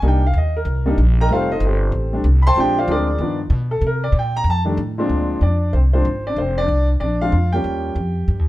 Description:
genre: jazz piano trio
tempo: 189 BPM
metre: 4/4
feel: swing 63% on 8ths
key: unclear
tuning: A4 = 441 Hz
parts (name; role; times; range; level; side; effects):
- warm upright piano; melody; 0.0-8.5 s; Bb2 to C6; -20 LUFS; equal; none
- upright bass; bass; 0.0-8.5 s; F1 to C3; -18 LUFS; equal; none
room: light reverb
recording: band playing live in one room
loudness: -16 LUFS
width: side -16 dB against mid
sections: 0.0-5.1 A section; 5.1-8.5 B section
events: upright piano solo 0.0-5.1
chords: 0.0 Cm7; 1.3 F9; 2.6 Bb9; 3.2 G7b13; 3.8 Bbsus2; 4.5 F6; 5.1 Bb9; 7.6 Eb9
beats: | 0.03 0.34 0.66 0.97 | 1.29 1.61 1.93 2.24 | 2.56 2.88 3.19 3.51 | 3.83 4.14 4.46 4.78 | 5.10 5.42 5.73 6.05 | 6.37 6.69 7.01 7.33 | 7.64 7.96 8.28

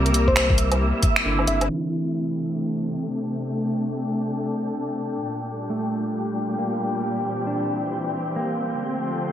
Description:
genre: future garage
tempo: 135 BPM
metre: 4/4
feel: swing 62% on 16ths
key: unclear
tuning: A4 = 440 Hz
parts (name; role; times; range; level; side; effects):
- electric guitar at the edge of break-up; accompaniment; 0.0-9.0 s; C3 to D4; -28 LUFS; right 2 dB; sidechain pumping, digital delay
- muted symphonic string section; sustained chords; 0.0-9.3 s; Bb2 to Bb4; -26 LUFS; left 1 dB; vintage 12-bit sampler grit, sidechain pumping, low-pass filter
- warm sub bass; bass; 0.0-1.7 s; G1 to C2; -23 LUFS; equal; sidechain pumping
- wind-like tuned noise texture; texture; 0.0-9.3 s; E5 to G5; -32 LUFS; equal; built-in reverb, analog chorus
- garage drum kit; drums; 0.1-1.7 s; finger snaps, hi-hat, woodblock; -23 LUFS; right 1 dB; low-pass filter on hats, small room reverb, low-pass filter on snare, low-pass filter on perc, gated reverb
- soft struck synth lead; melody; 0.3-1.7 s; C5 to E5; -25 LUFS; left 1 dB; chorus, digital delay
- electronic kick drum; drums; 0.3-1.1 s; none; -21 LUFS; equal; small room reverb
room: moderate plate reverb, RT60 1.8 s, digital ambience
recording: bright 1980s-style digital production, vinyl crackle, low-pass filter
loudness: -22 LUFS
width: side -10 dB against mid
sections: 0.0-1.7 A section; 1.7-9.3 B section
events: filter sweep on string section 1.7-9.3; filter sweep 1.7-9.3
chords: 0.0 C7; 1.7 D5; 5.3 Gm; 7.0 C7; 8.8 Dm7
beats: 0.36 0.81 1.25 | 1.70 2.14 2.58 3.03 | 3.47 3.92 4.36 4.81 | 5.25 5.70 6.14 6.58 | 7.03 7.47 7.92 8.36 | 8.81 9.25

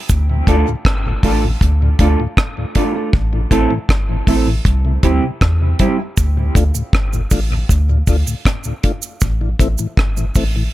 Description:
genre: dub reggae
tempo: 79 BPM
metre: 4/4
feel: straight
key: D minor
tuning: A4 = 440 Hz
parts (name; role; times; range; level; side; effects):
- soft dub sub bass; bass; 0.1-10.7 s; G1 to E2; -16 LUFS; equal; none
- deep reggae drum kit; drums; 0.1-10.5 s; hi-hat, kick drum, rim click; -16 LUFS; equal; none
- cabasa; percussion; 0.1-0.3, 6.2-10.5 s; none; -28 LUFS; right 10 dB; none
- mellow tonewheel organ; accompaniment; 0.3-10.6 s; D2 to F4; -23 LUFS; left 2 dB; slow rotary speaker, dub echo
- mellow electric guitar; accompaniment; 0.5-6.0 s; G3 to A4; -20 LUFS; right 3 dB; dub echo
room: studio ambience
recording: none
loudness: -13 LUFS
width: side -15 dB against mid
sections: 0.0-10.7 A section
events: part muted 0.1-6.2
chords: 0.1 Dm; 3.1 Am; 4.7 C; 6.2 D5; 9.2 A5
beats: | 0.09 0.85 1.61 2.37 | 3.13 3.89 4.65 5.41 | 6.17 6.93 7.69 8.45 | 9.21 9.97

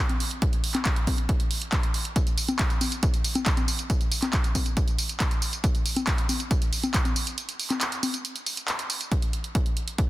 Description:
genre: trance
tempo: 138 BPM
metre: 4/4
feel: straight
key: none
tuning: none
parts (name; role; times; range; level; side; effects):
- punchy analog drum machine; drums; 0.1-10.1 s; congas, handclaps, hi-hat, tambourine; -28 LUFS; equal; sidechain pumping on hats, sidechain pumping on perc
- electronic kick drum; drums; 0.4-10.1 s; none; -24 LUFS; equal; none
room: little or no reverb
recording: dense, heavily limited modern master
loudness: -23 LUFS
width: side -17 dB against mid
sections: 0.0-9.1 A section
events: break 7.4-9.1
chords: none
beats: | 0.42 0.85 1.29 1.72 | 2.16 2.59 3.03 3.46 | 3.90 4.33 4.77 5.20 | 5.64 6.07 6.51 6.94 | 7.38 7.81 8.25 8.68 | 9.12 9.55 9.98

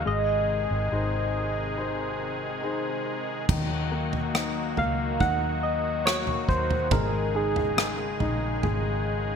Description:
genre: pop ballad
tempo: 70 BPM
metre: 4/4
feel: straight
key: unclear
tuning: A4 = 439 Hz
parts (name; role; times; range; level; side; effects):
- soft struck synth lead; melody; 0.0-8.2 s; Ab4 to Gb5; -28 LUFS; right 1 dB; chorus, phaser
- clear baby grand piano; accompaniment; 0.0-9.4 s; Eb3 to C5; -32 LUFS; left 6 dB; none
- pipe organ, strings celeste; sustained chords; 0.0-9.4 s; C3 to Ab4; -32 LUFS; equal; none
- vintage muted fingered electric bass; bass; 0.0-9.4 s; Ab1 to Eb2; -31 LUFS; equal; none
- unplugged drum kit; drums; 3.5-8.8 s; crash cymbal, kick drum, rim click, toms; -28 LUFS; right 1 dB; gated reverb
room: moderate plate reverb, RT60 2.5 s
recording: bright 1980s-style digital production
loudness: -24 LUFS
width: side -7 dB against mid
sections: 0.0-3.5 A section; 3.5-9.4 B section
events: none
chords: 0.1 Ab; 3.5 Ebm; 6.9 Absus4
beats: | 0.06 0.92 1.78 2.63 | 3.49 4.35 5.21 6.06 | 6.92 7.78 8.63

